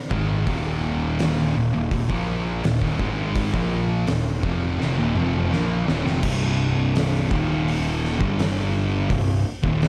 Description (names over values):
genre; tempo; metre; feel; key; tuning
stoner and doom metal; 83 BPM; 4/4; straight; unclear; A4 = 437 Hz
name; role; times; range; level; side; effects
high-gain distorted guitar; riff; 0.1-6.2 s; Eb2 to Bb3; -33 LUFS; equal; distortion
thick fuzz guitar; riff; 0.1-9.9 s; C2 to Bb3; -28 LUFS; equal; distortion
thick fuzz guitar; riff; 0.1-9.9 s; C2 to Bb3; -29 LUFS; equal; distortion
fuzz picked electric bass; bass; 0.1-9.9 s; C1 to Bb1; -30 LUFS; equal; overdrive
oversized low-tuned drum kit; drums; 0.1-9.9 s; crash cymbal, hi-hat, kick drum, snare drum, toms; -28 LUFS; equal; none
room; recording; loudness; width
light reverb; none; -23 LUFS; mono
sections
0.0-6.2 A section; 6.2-9.9 B section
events
drum fill 4.8-6.2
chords
0.5 Eb5; 6.2 C5; 7.3 Eb5; 8.2 G5; 9.1 Cm